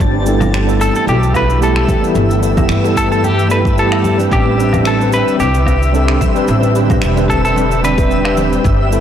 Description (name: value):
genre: sunset chillout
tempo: 111 BPM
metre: 4/4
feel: swing 55% on 16ths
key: G major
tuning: A4 = 440 Hz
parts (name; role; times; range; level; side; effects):
- shimmering ambient pad; sustained chords; 0.0-9.0 s; D3 to B4; -20 LUFS; equal; chorus, built-in reverb
- upright bass; bass; 0.0-9.0 s; E1 to G2; -16 LUFS; equal; none
- cabasa, woodblock and finger snaps; drums; 0.0-9.0 s; none; -26 LUFS; right 1 dB; soft clipping on snare
- electronic kick drum; drums; 0.0-8.8 s; none; -17 LUFS; equal; none
- twinkling granular texture; texture; 0.0-9.0 s; E5 to E6; -24 LUFS; left 1 dB; built-in reverb
- tine electric piano; accompaniment; 0.3-9.0 s; G3 to D5; -17 LUFS; moving between left 3 dB and right 3 dB; medium stereo tremolo, auto-pan, low-pass filter, digital delay
- congas and bongos; percussion; 0.4-8.5 s; none; -23 LUFS; left 1 dB; none
- semi-hollow electric guitar; melody; 0.8-8.3 s; G4 to B4; -18 LUFS; equal; digital delay
room: moderate concert hall reverb, RT60 2.2 s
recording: blown-out, overdriven recording, overdrive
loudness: -11 LUFS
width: side -9 dB against mid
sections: 0.0-9.0 A section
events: filter sweep on tine electric piano 0.0-9.0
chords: 0.0 G69; 4.3 Am11